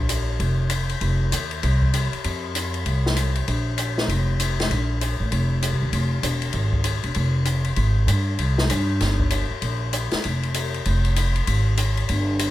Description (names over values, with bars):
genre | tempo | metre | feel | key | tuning
jazz, small-group swing and bop | 195 BPM | 4/4 | swing 63% on 8ths | F minor | A4 = 440 Hz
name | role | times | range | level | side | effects
upright bass | bass | 0.0-12.5 s | E1 to G2 | -21 LUFS | equal | none
open jazz drum kit | drums | 0.1-12.5 s | hi-hat, kick drum, ride cymbal, snare drum | -26 LUFS | left 3 dB | none
room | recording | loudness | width
little or no reverb | none | -20 LUFS | side -14 dB against mid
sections
0.0-12.5 A section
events
none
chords
none